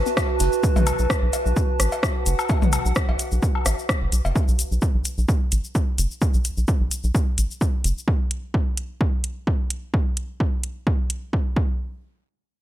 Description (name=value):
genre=minimal techno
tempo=129 BPM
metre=4/4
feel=swing 55% on 16ths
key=unclear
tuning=A4 = 440 Hz
part: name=rubbery square bass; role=bass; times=0.0-7.9 s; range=F#1 to B1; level=-22 LUFS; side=equal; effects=sidechain pumping
part: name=warbly tape-like pad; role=texture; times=0.0-4.4 s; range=F#4 to A5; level=-27 LUFS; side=right 2 dB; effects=chorus, built-in reverb, phaser, sidechain pumping
part: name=oversized low-tuned drum kit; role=drums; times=0.1-0.5 s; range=hi-hat, snare drum, tambourine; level=-43 LUFS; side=equal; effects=none
part: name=tube shaker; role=percussion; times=0.1-8.1 s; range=none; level=-32 LUFS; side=left 4 dB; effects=none
part: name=electronic kick drum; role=drums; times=0.2-11.7 s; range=none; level=-22 LUFS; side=equal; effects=overdrive
part: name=house drum kit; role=drums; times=0.2-11.2 s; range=hi-hat, rim click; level=-26 LUFS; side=equal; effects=overdrive
part: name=electronic cowbell, toms and woodblock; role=percussion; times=0.2-4.3 s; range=none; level=-28 LUFS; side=left 5 dB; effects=ping-pong delay
room=digital ambience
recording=none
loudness=-20 LUFS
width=side -13 dB against mid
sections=0.0-11.8 A section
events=none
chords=0.0 B7(no3); 11.6 N.C.